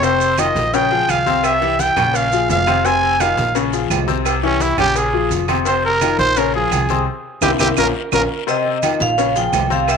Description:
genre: latin, salsa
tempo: 171 BPM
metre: 4/4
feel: straight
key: F minor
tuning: A4 = 440 Hz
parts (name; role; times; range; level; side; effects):
- growling trumpet; melody; 0.0-8.2 s; Db4 to Ab5; -17 LUFS; right 2 dB; none
- clear upright piano; accompaniment; 0.0-10.0 s; C3 to Db5; -20 LUFS; left 12 dB; none
- upright bass; bass; 0.0-10.0 s; F1 to C2; -24 LUFS; right 2 dB; none
- agogo bells and timbales; percussion; 0.0-10.0 s; none; -25 LUFS; right 15 dB; none
- congas; percussion; 0.0-10.0 s; none; -29 LUFS; right 2 dB; none
- cowbell; percussion; 0.0-10.0 s; none; -30 LUFS; left 11 dB; none
- guiro; percussion; 0.0-10.0 s; none; -34 LUFS; left 13 dB; none
- maracas; percussion; 0.0-10.0 s; none; -31 LUFS; right 20 dB; none
- claves; percussion; 0.4-10.0 s; none; -28 LUFS; right 16 dB; none
- vibraphone with hard mallets; melody; 8.5-10.0 s; Eb5 to G5; -18 LUFS; right 3 dB; none
room: moderate spring reverb, RT60 1.6 s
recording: 1960s-style stereo with parts hard left and right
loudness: -14 LUFS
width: side -6 dB against mid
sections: 0.0-8.5 A section; 8.5-10.0 B section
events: trumpet solo 0.0-8.5; band accent 7.1-8.5; drum fill 7.4-8.5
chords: 0.0 F5; 0.7 Bbm7; 1.4 C7; 2.1 Bbm7; 2.9 Fm7; 3.6 Bbm7; 4.3 C7; 5.0 Bbm7; 5.7 F5; 6.4 Bbm7; 7.1 C7; 7.8 Bbm; 8.5 F5; 9.2 Bbm7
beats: | 0.03 0.39 0.74 1.09 | 1.44 1.80 2.15 2.50 | 2.85 3.20 3.56 3.91 | 4.26 4.61 4.96 5.31 | 5.67 6.02 6.37 6.72 | 7.07 7.42 7.77 8.12 | 8.48 8.83 9.18 9.53 | 9.88

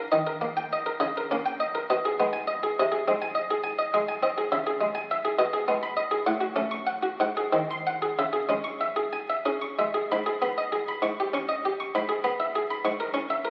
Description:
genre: classical, baroque-style suite movement for harpsichord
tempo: 60-70 BPM (dotted quarters)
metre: 6/8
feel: rubato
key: C# minor, G# minor from 10.1 s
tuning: A4 = 441 Hz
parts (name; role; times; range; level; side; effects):
- buff-stop harpsichord; solo; 0.0-13.5 s; G#2 to C#6; -27 LUFS; equal; none
room: wet recital hall reverb, RT60 1.8 s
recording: very old 78 rpm record, vinyl crackle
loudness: -27 LUFS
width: mono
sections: 0.0-10.1 A section; 10.1-13.5 A section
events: none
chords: 0.1 D#; 1.0 D#7/C#; 1.9 G#m/B; 2.8 G#/B#; 4.5 C#m; 5.4 G#m/B; 6.3 F#m/A; 7.2 G#7; 8.2 C#m; 10.1 G#m; 11.0 D#7/G#; 12.0 E/G#; 12.8 A#m7b5/G#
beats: 0.11 | 1.01 1.90 | 2.79 3.66 | 4.53 5.40 | 6.29 7.21 | 8.17 9.13 | 10.12 11.04 | 11.95 12.84

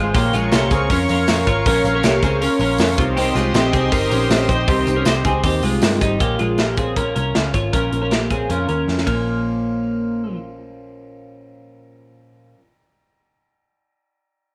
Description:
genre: jangly indie pop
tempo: 158 BPM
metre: 4/4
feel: straight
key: Bb dorian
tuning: A4 = 439 Hz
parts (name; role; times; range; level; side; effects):
- fingerpicked twelve-string acoustic guitar; accompaniment; 0.0-12.7 s; Bb2 to G4; -28 LUFS; equal; none
- lush unison pad; sustained chords; 0.0-6.2 s; G4 to Db6; -26 LUFS; equal; chorus
- twelve-string electric guitar; arpeggios; 0.0-10.4 s; G3 to Db5; -23 LUFS; equal; lush chorus
- vintage muted picked electric bass; bass; 0.0-12.1 s; G1 to G2; -25 LUFS; equal; none
- modern studio drum kit; drums; 0.1-9.2 s; hi-hat, kick drum, ride cymbal, snare drum; -23 LUFS; equal; none
- tambourine; percussion; 0.2-6.1 s; none; -40 LUFS; equal; none
room: moderate plate reverb, RT60 1.3 s, studio ambience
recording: none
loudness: -18 LUFS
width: mono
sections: 0.0-6.2 A section; 6.2-9.3 B section; 9.3-12.3 C section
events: drum fill 8.9-9.3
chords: 0.1 Bbm; 3.0 Cm; 6.2 Bbm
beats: | 0.15 0.52 0.90 1.28 | 1.66 2.04 2.41 2.79 | 3.17 3.55 3.93 4.30 | 4.68 5.06 5.44 5.82 | 6.20 6.58 6.96 7.34 | 7.73 8.11 8.49 8.88 | 9.26 9.64 10.03 10.41 | 10.80 11.18 11.56 11.95

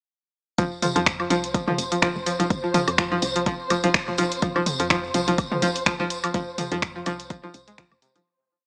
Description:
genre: minimal techno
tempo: 125 BPM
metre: 4/4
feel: swing 56% on 16ths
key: unclear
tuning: A4 = 440 Hz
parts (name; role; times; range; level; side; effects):
- string-like resonator pluck; riff; 0.6-8.2 s; C3 to Ab3; -27 LUFS; equal; chorus, sidechain pumping, analog delay
- woody FM bass; bass; 0.6-8.0 s; F1 to F2; -35 LUFS; equal; sidechain pumping
- electronic kick drum; drums; 0.6-7.9 s; none; -29 LUFS; equal; overdrive
- house drum kit; drums; 0.6-8.2 s; finger snaps, hi-hat; -28 LUFS; equal; overdrive
- electronic bongos, toms and woodblock; percussion; 0.6-8.2 s; none; -32 LUFS; equal; overdrive, analog delay
- tambourine; percussion; 0.6-8.2 s; none; -37 LUFS; equal; none
- flickering grainy texture; texture; 1.5-8.3 s; C5; -35 LUFS; equal; built-in reverb, sidechain pumping
room: light reverb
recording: dry, gritty hardware recording, transformer saturation, small speaker sound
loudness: -24 LUFS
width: mono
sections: 0.6-8.3 drop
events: drop 0.6-8.3; fade-out 5.7-8.3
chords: 0.6 F5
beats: | 0.58 1.06 1.54 2.02 | 2.50 2.98 3.46 3.94 | 4.42 4.90 5.38 5.86 | 6.34 6.82 7.30 7.78

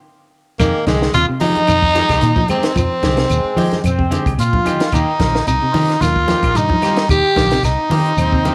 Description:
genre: afrobeat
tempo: 111 BPM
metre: 4/4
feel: swing 54% on 16ths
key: F dorian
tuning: A4 = 440 Hz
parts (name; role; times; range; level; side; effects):
- raspy tenor saxophone; melody; 0.6-8.5 s; Ab3 to G4; -19 LUFS; equal; cassette tape
- breathy tenor saxophone; second line; 0.6-8.5 s; Ab3 to Bb4; -30 LUFS; equal; none
- semi-hollow electric guitar; arpeggios; 0.6-8.5 s; C3 to Ab3; -26 LUFS; equal; cassette tape
- clean electric guitar; stabs; 0.6-8.5 s; Eb3 to G4; -30 LUFS; equal; subtle chorus, cassette tape
- fingered electric bass; bass; 0.6-8.5 s; Bb1 to F3; -21 LUFS; equal; none
- compact cocktail drum kit; drums; 0.6-8.5 s; hi-hat, kick drum, snare drum; -24 LUFS; equal; cassette tape
- claves; percussion; 0.6-8.3 s; none; -36 LUFS; equal; none
- shekere; percussion; 0.6-8.5 s; none; -27 LUFS; equal; none
- percussive tonewheel organ; accompaniment; 0.8-8.5 s; Ab3 to G4; -34 LUFS; equal; none
- congas; percussion; 0.9-8.5 s; none; -28 LUFS; equal; none
- bright trombone section; second line; 3.3-4.2, 8.2-8.5 s; Ab3 to C4; -28 LUFS; equal; cassette tape
room: light reverb, small room ambience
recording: home recording on cassette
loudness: -16 LUFS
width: mono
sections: 0.6-8.5 A section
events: stop 0.0-0.6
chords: 0.0 N.C.; 0.6 Fm9; 4.9 Eb6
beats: 0.06 | 0.60 1.14 1.68 2.22 | 2.77 3.31 3.85 4.39 | 4.93 5.48 6.02 6.56 | 7.10 7.64 8.19

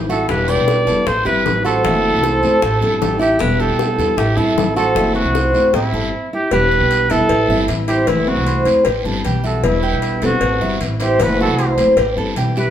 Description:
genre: latin, Cuban son and guajira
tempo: 154 BPM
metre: 4/4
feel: straight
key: unclear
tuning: A4 = 436 Hz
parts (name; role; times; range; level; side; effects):
- fingerpicked steel-string acoustic guitar; accompaniment; 0.0-12.7 s; B2 to E4; -22 LUFS; left 3 dB; none
- Cuban tres; arpeggios; 0.0-12.7 s; E4 to E5; -21 LUFS; equal; none
- upright bass; bass; 0.0-12.7 s; E1 to E2; -21 LUFS; right 1 dB; none
- warm trumpet; melody; 0.1-12.7 s; E4 to D5; -19 LUFS; right 2 dB; none
- nylon-string guitar; second line; 0.1-12.7 s; B3 to B4; -22 LUFS; right 2 dB; none
- bongos and cowbell; percussion; 0.1-12.6 s; none; -23 LUFS; left 5 dB; none
- guiro; percussion; 0.1-12.7 s; none; -31 LUFS; right 5 dB; none
room: wet large studio reverb, RT60 0.9 s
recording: band playing live in one room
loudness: -14 LUFS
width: side -10 dB against mid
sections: 0.0-6.5 A section; 6.5-12.7 A section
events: stop 6.1-6.5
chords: 0.3 Em7; 1.1 Am7; 1.8 F#m7b5; 2.6 Am7; 3.4 Em7; 4.2 Am7; 5.0 F#m7b5; 5.7 Am7; 6.5 Em7; 7.3 Am7; 8.1 F#m7b5; 8.9 Am7; 9.6 Em7; 10.4 Am7; 11.2 F#m7b5; 12.0 Am7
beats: | 0.29 0.68 1.07 1.46 | 1.85 2.23 2.62 3.01 | 3.40 3.79 4.18 4.57 | 4.96 5.35 5.74 6.13 | 6.52 6.91 7.30 7.69 | 8.08 8.47 8.86 9.25 | 9.64 10.03 10.42 10.81 | 11.20 11.59 11.98 12.37

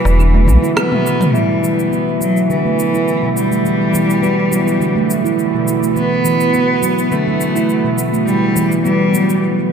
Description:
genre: organic downtempo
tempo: 104 BPM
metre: 4/4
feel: swing 53% on 16ths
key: E minor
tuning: A4 = 440 Hz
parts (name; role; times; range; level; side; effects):
- clear cello; melody; 0.0-9.4 s; E3 to B3; -17 LUFS; right 1 dB; dub echo
- bowed-like drone; sustained chords; 0.0-9.7 s; E3 to F#4; -22 LUFS; left 1 dB; built-in reverb
- bronze singing bowl; texture; 0.0-9.4 s; B3 to E5; -28 LUFS; left 2 dB; stereo widening
- warm sub bass; bass; 0.1-0.6 s; E1 to B1; -10 LUFS; equal; none
- deep house drum kit; drums; 0.1-9.4 s; claves, rim click, shaker, toms; -22 LUFS; equal; studio reverb, tape echo
- darbuka; percussion; 0.1-1.3 s; none; -27 LUFS; left 2 dB; none
- handpan; arpeggios; 0.2-9.2 s; B2 to E4; -17 LUFS; right 2 dB; low-pass filter, dub echo
room: moderate plate reverb, RT60 2.8 s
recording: echo-heavy mix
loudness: -12 LUFS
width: side -7 dB against mid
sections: 0.0-1.3 A section; 1.3-9.7 B section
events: drum fill 0.5-1.3; band accent 0.8; filter sweep on handpan 1.3-9.7; break 9.4-9.7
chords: 0.0 E5; 1.3 Em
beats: 0.19 0.77 | 1.34 1.92 2.50 3.07 | 3.65 4.23 4.80 5.38 | 5.96 6.54 7.11 7.69 | 8.27 8.84 9.42

